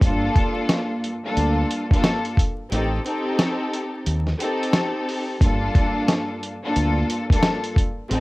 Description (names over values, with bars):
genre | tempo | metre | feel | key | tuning
hip hop, boom-bap hip-hop | 89 BPM | 4/4 | swing 63% on 16ths | G minor | A4 = 440 Hz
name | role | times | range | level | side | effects
rich studio string section | accompaniment | 0.0-8.2 s | G2 to A4 | -23 LUFS | left 1 dB | cassette tape, high-pass filter, low-pass filter
deep dub fingered electric bass | bass | 0.0-8.2 s | G1 to Eb2 | -22 LUFS | equal | none
dusty soul sampler-style drum kit | drums | 0.0-8.2 s | hi-hat, kick drum, snare drum | -20 LUFS | equal | vintage 12-bit sampler grit, cassette tape
room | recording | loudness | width
light reverb | home recording on cassette, vinyl crackle | -19 LUFS | side -20 dB against mid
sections
0.0-8.2 A section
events
break 2.7-5.4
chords
0.0 Gm9; 2.7 Am7b5; 5.4 Gm9